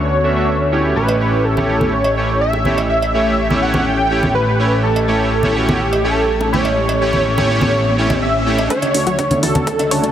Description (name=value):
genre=progressive house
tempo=124 BPM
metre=4/4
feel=straight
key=unclear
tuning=A4 = 442 Hz
part: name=wide unison lead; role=melody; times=0.0-10.1 s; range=F#4 to G5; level=-18 LUFS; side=equal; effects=analog chorus, tape echo
part: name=warm analog pad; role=sustained chords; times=0.0-10.1 s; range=D2 to G4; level=-24 LUFS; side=equal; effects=chorus, sidechain pumping
part: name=fat analog bass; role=bass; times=0.0-8.7 s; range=A1 to D2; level=-21 LUFS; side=equal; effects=sidechain pumping
part: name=soft supersaw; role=stabs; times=0.2-10.0 s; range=A3 to E5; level=-19 LUFS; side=right 1 dB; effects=sidechain pumping, low-pass filter, tape echo
part: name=cowbell, congas and bongos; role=percussion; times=1.1-9.9 s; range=none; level=-22 LUFS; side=right 1 dB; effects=sidechain pumping on perc
part: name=riser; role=sound effects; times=6.2-10.1 s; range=none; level=-27 LUFS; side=equal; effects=none
part: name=analog pluck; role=arpeggios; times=8.7-10.1 s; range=D4 to C#5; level=-21 LUFS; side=left 1 dB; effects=chorus, sidechain pumping, tape echo
part: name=electronic hi-hat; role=drums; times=8.7-10.1 s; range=none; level=-24 LUFS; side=left 2 dB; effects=overdrive, small room ambience
part: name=electronic kick drum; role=drums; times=8.7-9.8 s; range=none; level=-28 LUFS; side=equal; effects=overdrive, high-pass filter on kick, small room ambience
room=moderate huge ambient reverb, RT60 6.6 s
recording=heavily compressed radio sound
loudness=-13 LUFS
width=side -10 dB against mid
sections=0.0-8.7 A section; 8.7-10.1 B section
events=filter sweep on supersaw synth 0.0-8.7, 8.7-10.1; riser 6.2-8.7, 8.7-10.1; build-up 8.7-10.1; filter sweep on synth arpeggio sound 8.7-10.1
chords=0.0 Dmaj7; 1.0 A7; 8.7 Dmaj7